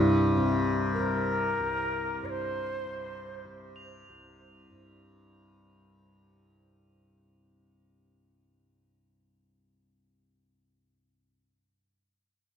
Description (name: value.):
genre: world meditative, free-time meditation music.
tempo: free time.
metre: none.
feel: none.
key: unclear.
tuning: A4 = 440 Hz.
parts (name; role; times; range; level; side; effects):
tanpura; drone; 0.0-11.9 s; C2 to C3; -27 LUFS; equal; none.
breathy shakuhachi; melody; 0.9-3.9 s; Bb4 to D5; -33 LUFS; left 1 dB; dub echo.
crotales; texture; 3.8-5.6 s; F7; -55 LUFS; right 1 dB; none.
room: moderate echo chamber reverb, RT60 2.0 s, small room ambience.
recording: echo-heavy mix.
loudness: -27 LUFS.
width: side -8 dB against mid.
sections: 0.0-5.1 A section.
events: fade-out 0.0-5.1.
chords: none.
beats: free time.